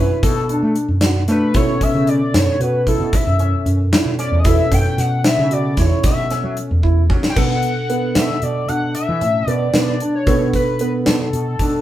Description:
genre	progressive instrumental, band music in an uneven meter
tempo	227 BPM (eighths)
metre	11/8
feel	straight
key	B minor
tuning	A4 = 441 Hz
part	pulse-width lead	melody	0.0-11.8 s	A4 to G5	-22 LUFS	left 2 dB	chorus
part	barky tine electric piano	accompaniment	0.0-11.8 s	B2 to A4	-24 LUFS	left 1 dB	phaser
part	dark concert grand piano	arpeggios	0.0-11.8 s	B3 to F#4	-23 LUFS	right 3 dB	none
part	fretless electric bass	bass	0.0-11.8 s	E2 to A3	-19 LUFS	equal	none
part	gated 80s drum kit	drums	0.2-11.7 s	crash cymbal, hi-hat, kick drum, snare drum	-18 LUFS	equal	none
room	moderate large studio reverb, RT60 1.3 s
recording	band playing live in one room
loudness	-15 LUFS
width	side -13 dB against mid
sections	0.0-7.4 A section; 7.4-11.8 B section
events	analog synth lead solo 0.0-7.4; drum fill 6.8-7.4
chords	0.0 Bm7; 1.6 A; 7.4 Bm7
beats	0.23 0.49 0.76 1.02 1.29 | 1.55 1.81 2.08 2.34 2.61 2.87 3.14 3.40 3.67 3.93 4.19 | 4.46 4.72 4.99 5.25 5.52 5.78 6.04 6.31 6.57 6.84 7.10 | 7.37 7.63 7.90 8.16 8.43 8.69 8.95 9.22 9.48 9.75 10.01 | 10.28 10.54 10.81 11.07 11.34 11.60

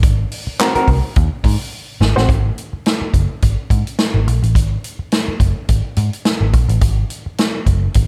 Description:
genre	funk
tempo	106 BPM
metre	4/4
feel	swing 56% on 16ths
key	Ab mixolydian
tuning	A4 = 442 Hz
part	vintage muted picked electric bass	bass	0.0-8.1 s	Gb1 to Ab2	-18 LUFS	equal	none
part	swinging big-band drum kit	drums	0.0-8.1 s	handclaps, hi-hat, kick drum, snare drum	-19 LUFS	equal	none
part	hollow-body jazz guitar	accompaniment	0.6-2.3 s	C4 to C5	-20 LUFS	equal	none
room	light reverb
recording	none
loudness	-17 LUFS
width	mono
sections	0.0-2.3 A section; 2.3-8.1 B section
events	drum fill 1.7-2.3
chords	0.0 Ab9; 2.3 N.C.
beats	| 0.03 0.59 1.16 1.73 | 2.29 2.86 3.42 3.99 | 4.55 5.12 5.69 6.25 | 6.82 7.38 7.95

